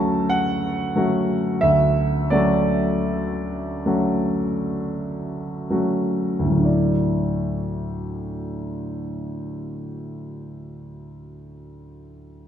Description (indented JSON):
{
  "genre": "classical, impressionist solo piano",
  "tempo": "29-48 BPM",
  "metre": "3/4",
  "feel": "rubato",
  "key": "D major",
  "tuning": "A4 = 440 Hz",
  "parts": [
    { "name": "clear concert grand piano", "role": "solo", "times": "0.0-12.5 s", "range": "D2 to A5", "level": "-21 LUFS", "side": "equal", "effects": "none" }
  ],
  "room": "moderate scoring stage reverb, RT60 1.5 s",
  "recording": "minimal, uncompressed stereo recording",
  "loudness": "-20 LUFS",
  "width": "side -9 dB against mid",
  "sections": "0.0-6.7 A section; 6.7-11.7 B section",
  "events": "slowing down 0.0-6.7",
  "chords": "0.0 Dmaj7; 6.7 Dadd9"
}